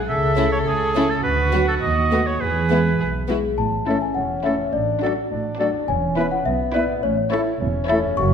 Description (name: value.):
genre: cinematic, playful, whimsical film cue.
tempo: 104 BPM.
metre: 2/4.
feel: straight.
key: A major.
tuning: A4 = 443 Hz.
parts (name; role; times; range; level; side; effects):
concert harp; arpeggios; 0.0-8.3 s; E2 to E5; -31 LUFS; left 9 dB; none.
dark studio cello section; bass; 0.0-8.3 s; E2 to A4; -28 LUFS; right 3 dB; none.
clear oboe; second line; 0.1-8.0 s; G#4 to E5; -25 LUFS; right 2 dB; none.
dark studio double bass section; bass; 0.1-8.3 s; E1 to E2; -24 LUFS; right 4 dB; none.
warm studio violin section; melody; 0.4-8.1 s; E4 to C#5; -32 LUFS; left 4 dB; none.
rich studio violin section; second line; 0.4-8.1 s; B3 to E4; -29 LUFS; left 1 dB; none.
dark studio viola section; accompaniment; 0.4-8.1 s; F#3 to B3; -30 LUFS; right 1 dB; none.
celesta; melody; 3.6-8.3 s; C#5 to Db6; -25 LUFS; left 6 dB; none.
hollow concert flute; second line; 3.9-7.9 s; D5 to E5; -29 LUFS; left 3 dB; none.
mellow clarinet; second line; 3.9-8.0 s; C#4 to F#4; -31 LUFS; left 2 dB; none.
clear French horn section; sustained chords; 3.9-8.3 s; E3 to Gb4; -29 LUFS; left 4 dB; none.
mellow bassoon; accompaniment; 4.2-8.3 s; B3 to F#4; -27 LUFS; left 2 dB; none.
room: wet scoring stage reverb, RT60 1.6 s.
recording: none.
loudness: -18 LUFS.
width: side -7 dB against mid.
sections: 0.0-3.6 A section; 3.6-8.3 B section.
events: none.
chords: 0.1 A/C#; 1.2 Bm/D; 1.8 B7/D#; 2.4 E; 3.6 A; 4.7 D/A; 5.9 E5; 7.0 A.